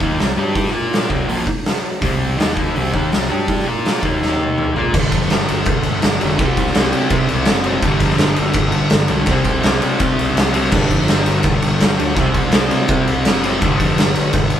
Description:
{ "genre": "garage rock duo or trio", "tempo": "166 BPM", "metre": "4/4", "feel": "straight", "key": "unclear", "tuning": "A4 = 440 Hz", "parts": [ { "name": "fuzz guitar", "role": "riff", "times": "0.0-14.6 s", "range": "G2 to Bb4", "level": "-18 LUFS", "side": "equal", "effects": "distortion" }, { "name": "growling fingered electric bass", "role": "bass", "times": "0.0-14.6 s", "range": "F1 to C3", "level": "-24 LUFS", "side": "equal", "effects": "overdrive" }, { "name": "oversized low-tuned drum kit", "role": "drums", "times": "0.0-14.6 s", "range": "crash cymbal, hi-hat, kick drum, ride cymbal, snare drum, toms", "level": "-17 LUFS", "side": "equal", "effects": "none" } ], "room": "light reverb", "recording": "band playing live in one room", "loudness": "-14 LUFS", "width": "side -10 dB against mid", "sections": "0.0-4.9 A section; 4.9-14.6 B section", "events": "drum fill 4.2-4.9", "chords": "0.4 G5; 0.7 Bb5; 1.1 C5; 2.4 Eb5; 2.7 C5; 3.3 G5; 3.7 Bb5; 4.0 Eb5; 4.8 Bb5; 4.9 G5; 6.4 C5; 7.8 G5; 9.3 C5; 10.7 G5; 12.2 C5; 13.6 G5" }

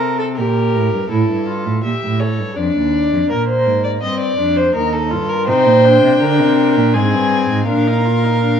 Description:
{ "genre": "classical, baroque-style fugue for string quartet", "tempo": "82 BPM", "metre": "3/4", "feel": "straight", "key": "unclear", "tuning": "A4 = 440 Hz", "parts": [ { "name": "rich violin", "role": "second line", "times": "0.0-8.6 s", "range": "Ab4 to E5", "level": "-17 LUFS", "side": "left 1 dB", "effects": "none" }, { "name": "warm viola", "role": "accompaniment", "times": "0.0-8.6 s", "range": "Bb3 to Bb4", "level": "-19 LUFS", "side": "left 2 dB", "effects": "none" }, { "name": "dark cello", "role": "bass", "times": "0.0-8.6 s", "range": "Eb2 to D3", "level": "-18 LUFS", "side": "right 2 dB", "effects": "none" }, { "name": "warm violin", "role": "melody", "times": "5.5-8.6 s", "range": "F5 to Ab5", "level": "-22 LUFS", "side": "left 6 dB", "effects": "none" } ], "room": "wet stone room reverb, RT60 1.0 s", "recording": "worn, warbling old tape, cassette tape, warbly pitch drift", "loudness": "-13 LUFS", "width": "side -8 dB against mid", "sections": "0.0-1.1 A section; 1.1-8.6 B section", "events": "none", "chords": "0.4 Gm/Bb; 1.1 A7; 2.6 Dm; 3.3 Bb7; 4.8 Eb; 5.5 Cm; 6.9 Abmaj7/G; 7.7 Bb" }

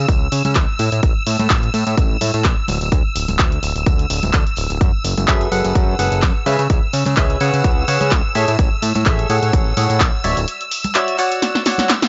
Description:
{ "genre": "piano house", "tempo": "127 BPM", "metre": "4/4", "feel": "swing 54% on 16ths", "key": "unclear", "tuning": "A4 = 440 Hz", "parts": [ { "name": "string machine, violins", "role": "sustained chords", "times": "0.0-12.1 s", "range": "E6", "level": "-28 LUFS", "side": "equal", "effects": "ensemble chorus, sidechain pumping" }, { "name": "fat analog bass", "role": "bass", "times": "0.0-10.5 s", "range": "D1 to C#3", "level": "-21 LUFS", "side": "equal", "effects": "sidechain pumping" }, { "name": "electronic kick drum", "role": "drums", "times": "0.1-10.1 s", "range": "none", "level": "-19 LUFS", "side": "equal", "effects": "none" }, { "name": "punchy analog drum machine", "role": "drums", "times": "0.1-12.1 s", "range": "handclaps, hi-hat, snare drum", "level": "-24 LUFS", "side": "equal", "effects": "none" }, { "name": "tambourine and congas", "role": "percussion", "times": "0.1-12.0 s", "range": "none", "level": "-31 LUFS", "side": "equal", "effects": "none" }, { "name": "percussive organ stab", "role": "riff", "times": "5.3-11.9 s", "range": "F#4 to F#5", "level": "-23 LUFS", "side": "equal", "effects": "subtle chorus, sidechain pumping, tape echo" } ], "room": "digital ambience", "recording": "dry, gritty hardware recording, nothing above 7.7 kHz", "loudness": "-17 LUFS", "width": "mono", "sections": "0.0-12.1 A section", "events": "drum fill 11.4-12.1", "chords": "0.0 C#m; 0.8 A5; 2.7 Dsus2; 4.8 F#m11; 6.5 C#m7; 8.4 Amaj7; 10.2 Dmaj9" }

